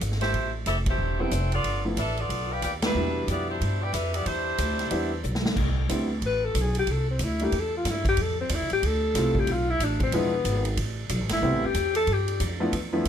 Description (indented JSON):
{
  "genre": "jazz, big band swing",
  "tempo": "184 BPM",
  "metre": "4/4",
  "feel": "swing 62% on 8ths",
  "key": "C major",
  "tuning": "A4 = 439 Hz",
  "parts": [
    { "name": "upright bass", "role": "bass", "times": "0.0-13.1 s", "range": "E1 to G2", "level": "-28 LUFS", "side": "equal", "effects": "none" },
    { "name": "swinging big-band drum kit", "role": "drums", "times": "0.0-13.1 s", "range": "crash cymbal, hi-hat, kick drum, ride cymbal, snare drum", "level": "-31 LUFS", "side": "right 1 dB", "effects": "none" },
    { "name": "clear saxophone section", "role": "melody", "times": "0.2-5.2 s", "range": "G3 to G5", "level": "-28 LUFS", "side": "equal", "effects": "none" },
    { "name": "warm baby grand piano", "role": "accompaniment", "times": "1.2-13.1 s", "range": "B2 to F4", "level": "-28 LUFS", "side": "right 1 dB", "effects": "none" },
    { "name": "breathy alto saxophone", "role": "melody", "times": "6.3-12.4 s", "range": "B3 to B4", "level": "-26 LUFS", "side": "left 3 dB", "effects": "none" }
  ],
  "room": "light reverb",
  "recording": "close, detailed microphones",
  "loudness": "-23 LUFS",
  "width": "side -9 dB against mid",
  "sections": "0.0-5.6 A section; 5.6-13.1 B section",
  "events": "band accent 0.8, 2.8; drum fill 5.2-5.6; alto saxophone solo 5.6-13.1",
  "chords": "0.3 Am7; 1.6 G13; 3.0 Cmaj9; 6.9 C69; 8.2 Fmaj9; 9.5 Asus2; 10.1 E7b9; 10.8 Am7; 12.1 G13",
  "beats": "0.01 | 0.34 0.66 0.99 1.32 | 1.65 1.97 2.30 2.63 | 2.95 3.28 3.61 3.93 | 4.26 4.59 4.91 5.24 | 5.57 5.89 6.22 6.55 | 6.87 7.20 7.53 7.85 | 8.18 8.50 8.83 9.15 | 9.48 9.80 10.13 10.46 | 10.78 11.11 11.43 11.76 | 12.08 12.41 12.73 13.06"
}